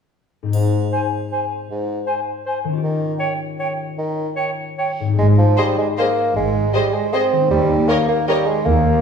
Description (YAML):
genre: classical, orchestral ballroom waltz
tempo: 144-172 BPM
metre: 3/4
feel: rubato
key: Ab major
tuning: A4 = 440 Hz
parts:
  - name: concert harp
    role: arpeggios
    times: 0.4-9.0 s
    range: Ab2 to Bb4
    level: -23 LUFS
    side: left 5 dB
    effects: none
  - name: warm bassoon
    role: accompaniment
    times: 0.5-9.0 s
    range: Ab2 to C4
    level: -19 LUFS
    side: right 1 dB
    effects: none
  - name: triangle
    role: percussion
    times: 0.5-1.3 s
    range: none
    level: -43 LUFS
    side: left 2 dB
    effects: none
  - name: clear clarinet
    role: second line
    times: 0.9-4.9 s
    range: C5 to Db5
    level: -27 LUFS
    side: equal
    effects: none
  - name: hollow small flute group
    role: second line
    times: 0.9-4.8 s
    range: G5 to Ab5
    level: -25 LUFS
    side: right 1 dB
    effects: none
  - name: rich symphonic double bass section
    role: bass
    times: 5.2-9.0 s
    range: Ab1 to Eb2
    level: -21 LUFS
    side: right 2 dB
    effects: none
  - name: warm symphonic cello section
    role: bass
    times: 5.2-9.0 s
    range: Eb2 to Ab2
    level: -21 LUFS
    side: right 2 dB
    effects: none
  - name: warm symphonic violin section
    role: melody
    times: 5.6-8.4 s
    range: Eb5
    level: -28 LUFS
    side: left 3 dB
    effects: none
  - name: warm symphonic violin section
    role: second line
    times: 5.6-8.4 s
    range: C5 to Db5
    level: -26 LUFS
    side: left 2 dB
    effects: none
  - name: warm symphonic viola section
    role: accompaniment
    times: 5.6-8.4 s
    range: Ab4 to Bb4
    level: -27 LUFS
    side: right 2 dB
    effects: none
room: wet recital hall reverb, RT60 1.2 s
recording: recorded in a church or concert hall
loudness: -16 LUFS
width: side -6 dB against mid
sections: 0.5-5.2 A section; 5.2-9.0 B section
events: none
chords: 0.5 Ab; 7.5 Eb7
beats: | 0.53 0.92 1.32 | 1.70 2.07 2.46 | 2.83 3.20 3.60 | 3.97 4.36 4.78 | 5.18 5.58 5.98 | 6.36 6.74 7.13 | 7.50 7.88 8.28 | 8.65